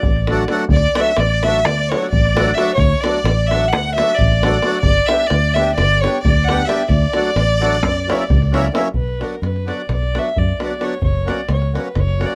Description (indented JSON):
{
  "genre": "balkan folk, Balkan wedding band",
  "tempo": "262 BPM (eighths)",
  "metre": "9/8",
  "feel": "straight",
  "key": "D major, B harmonic minor from 8.9 s",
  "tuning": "A4 = 439 Hz",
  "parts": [
    { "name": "dark fiddle", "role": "melody", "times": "0.0-12.3 s", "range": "A#4 to F#5", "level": "-22 LUFS", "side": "equal", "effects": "none" },
    { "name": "davul", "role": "percussion", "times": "0.0-12.3 s", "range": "none", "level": "-23 LUFS", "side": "equal", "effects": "none" },
    { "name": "fingered electric bass", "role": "bass", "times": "0.1-12.2 s", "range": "F#1 to F#2", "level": "-20 LUFS", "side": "equal", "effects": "none" },
    { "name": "accordion", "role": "accompaniment", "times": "0.3-12.3 s", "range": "F#3 to G4", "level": "-23 LUFS", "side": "equal", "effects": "none" },
    { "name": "warm violin", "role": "second line", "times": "0.7-8.7 s", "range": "C#5 to F#5", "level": "-27 LUFS", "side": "equal", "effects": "none" }
  ],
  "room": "light reverb",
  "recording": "none",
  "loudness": "-17 LUFS",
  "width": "mono",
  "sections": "0.7-8.9 A section; 8.9-12.3 B section",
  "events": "none",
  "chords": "0.0 D; 4.8 G; 6.9 D; 7.8 F#7; 8.9 Bm; 11.0 F#",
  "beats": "0.01 0.25 0.48 | 0.71 0.94 1.17 1.40 1.63 1.86 2.09 2.32 2.55 | 2.78 3.01 3.24 3.46 3.69 3.92 4.15 4.38 4.61 | 4.84 5.07 5.29 5.52 5.75 5.98 6.21 6.44 6.67 | 6.89 7.12 7.35 7.58 7.81 8.03 8.26 8.49 8.72 | 8.95 9.18 9.41 9.63 9.86 10.09 10.32 10.55 10.78 | 11.01 11.24 11.46 11.69 11.92 12.15"
}